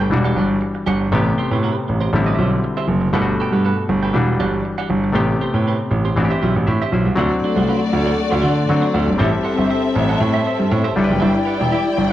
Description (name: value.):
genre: disco.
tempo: 119 BPM.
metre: 4/4.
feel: straight.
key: unclear.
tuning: A4 = 440 Hz.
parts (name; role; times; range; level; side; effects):
clean electric guitar; accompaniment; 0.0-12.1 s; C4 to G5; -26 LUFS; right 6 dB; spring reverb.
overdriven clav; accompaniment; 0.0-12.1 s; B2 to E5; -22 LUFS; left 3 dB; none.
clear grand piano; bass; 0.0-12.1 s; E1 to D3; -18 LUFS; right 1 dB; none.
dark studio string section; second line; 7.2-12.1 s; A3 to G5; -20 LUFS; left 3 dB; none.
room: studio reverb.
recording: dry, close 1970s-style studio recording.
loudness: -15 LUFS.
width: side -13 dB against mid.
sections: 0.0-7.2 A section; 7.2-12.1 B section.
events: none.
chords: 0.1 Em9; 1.1 Am9; 2.1 D9sus4/A; 3.1 Gmaj9; 4.1 Em9; 5.2 Am9; 6.2 D9sus4/A; 7.2 D7; 9.2 Am7; 11.0 G6.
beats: 0.11 0.62 | 1.12 1.63 2.13 2.63 | 3.14 3.65 4.15 4.65 | 5.16 5.66 6.17 6.67 | 7.18 7.68 8.19 8.69 | 9.20 9.70 10.21 10.71 | 11.22 11.72.